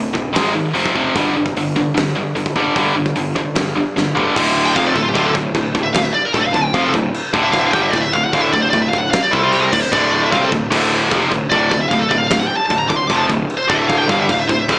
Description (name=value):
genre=heavy metal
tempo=151 BPM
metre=4/4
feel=straight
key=D minor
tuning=A4 = 441 Hz
part: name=tight distorted guitar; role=riff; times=0.0-14.8 s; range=D2 to C4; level=-17 LUFS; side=equal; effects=distortion
part: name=fuzz picked electric bass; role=bass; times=0.0-14.8 s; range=D1 to C2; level=-23 LUFS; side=equal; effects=overdrive
part: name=big rock drum kit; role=drums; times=0.1-14.8 s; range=china cymbal, crash cymbal, hi-hat, kick drum, snare drum, toms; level=-21 LUFS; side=equal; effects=none
part: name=high-gain lead guitar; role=melody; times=4.7-14.8 s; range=F4 to D6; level=-17 LUFS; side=equal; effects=distortion
room=moderate studio reverb, RT60 0.8 s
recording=small speaker sound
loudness=-13 LUFS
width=side -29 dB against mid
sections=0.0-4.3 A section; 4.3-14.8 B section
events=drum fill 3.9-4.3; half time 4.3-14.8; lead electric guitar solo 4.3-14.8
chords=0.3 G#5; 0.7 F5; 1.1 G5; 4.3 Dm; 9.3 C5; 9.7 Dm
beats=0.35 0.75 | 1.15 1.55 1.95 2.35 | 2.75 3.15 3.55 3.95 | 4.34 4.74 5.14 5.54 | 5.94 6.33 6.73 7.13 | 7.53 7.93 8.32 8.72 | 9.12 9.52 9.92 10.31 | 10.71 11.11 11.51 11.90 | 12.30 12.70 13.10 13.49 | 13.89 14.29 14.69